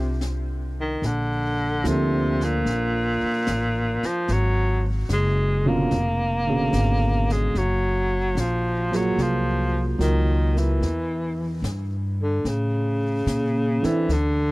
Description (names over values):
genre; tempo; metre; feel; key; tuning
jazz ballad; 74 BPM; 4/4; swing 69% on 8ths; unclear; A4 = 440 Hz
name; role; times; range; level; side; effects
breathy baritone saxophone; melody; 0.0-14.5 s; Bb2 to Bb3; -25 LUFS; equal; tape echo
warm baby grand piano; accompaniment; 0.0-14.1 s; Cb3 to Bb4; -26 LUFS; right 2 dB; none
upright bass; bass; 0.0-14.5 s; F1 to Bb2; -24 LUFS; equal; none
jazz brush drum kit; drums; 0.2-14.5 s; brushed snare drum, hi-hat, snare drum; -34 LUFS; left 1 dB; none
room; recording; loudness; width
little or no reverb; dry, close 1970s-style studio recording; -20 LUFS; side -21 dB against mid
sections
0.0-1.0 A section; 1.0-14.5 B section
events
none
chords
0.0 F; 1.0 Bbmaj7; 4.3 Abm7; 5.9 Db7b9; 7.6 Gbmaj9; 10.8 Em; 12.4 A